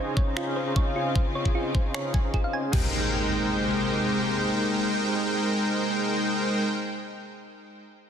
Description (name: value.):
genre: future bass.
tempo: 152 BPM.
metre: 4/4.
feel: half-time.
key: Ab major.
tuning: A4 = 437 Hz.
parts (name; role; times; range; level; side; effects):
dark chamber string section; sustained chords; 0.0-6.7 s; C3 to G4; -33 LUFS; left 2 dB; sidechain pumping.
soft supersaw; riff; 0.0-6.7 s; Ab3 to Bb5; -26 LUFS; equal; vintage 12-bit sampler grit, sidechain pumping, low-pass filter, tape echo.
thumb-piano-like synth pluck; arpeggios; 0.2-2.9 s; F4 to Ab5; -35 LUFS; right 1 dB; chorus, sidechain pumping, tape echo.
electronic kick drum; drums; 0.2-2.8 s; none; -24 LUFS; equal; none.
pop drum kit; drums; 0.4-2.8 s; crash cymbal, finger snaps; -36 LUFS; left 4 dB; soft clipping on snare.
impact; sound effects; 2.7-7.4 s; none; -33 LUFS; equal; none.
room: moderate lush hall reverb, RT60 1.6 s.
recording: dense, heavily limited modern master.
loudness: -23 LUFS.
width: side -8 dB against mid.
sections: 0.0-2.7 A section; 2.7-5.9 B section.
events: none.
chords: 0.0 Dbmaj9; 2.7 Abmaj9.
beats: 0.36 0.76 | 1.16 1.55 1.94 2.34 | 2.73 3.13 3.52 3.92 | 4.31 4.71 5.10 5.50.